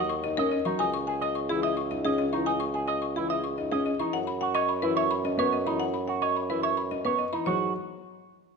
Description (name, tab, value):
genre	classical, minimalist pattern music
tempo	108 BPM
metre	3/4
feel	straight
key	G# minor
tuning	A4 = 440 Hz
part	buzzing marimba with hard mallets	melody	0.0-7.7 s	G#4 to C#6	-30 LUFS	left 9 dB	none
part	electric guitar with an envelope filter	arpeggios	0.0-7.7 s	D#4 to D#5	-30 LUFS	right 9 dB	none
part	mellow bassoon	bass	0.0-7.7 s	C#2 to G#2	-32 LUFS	right 2 dB	none
part	dark concert grand piano	accompaniment	0.2-7.7 s	E3 to D#4	-32 LUFS	left 1 dB	none
room	wet recital hall reverb, RT60 1.6 s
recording	none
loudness	-25 LUFS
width	side -5 dB against mid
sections	0.0-7.5 A section; 7.5-8.6 B section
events	none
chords	0.0 D#m; 0.8 C#m; 4.1 F#7sus4; 7.5 G#7sus4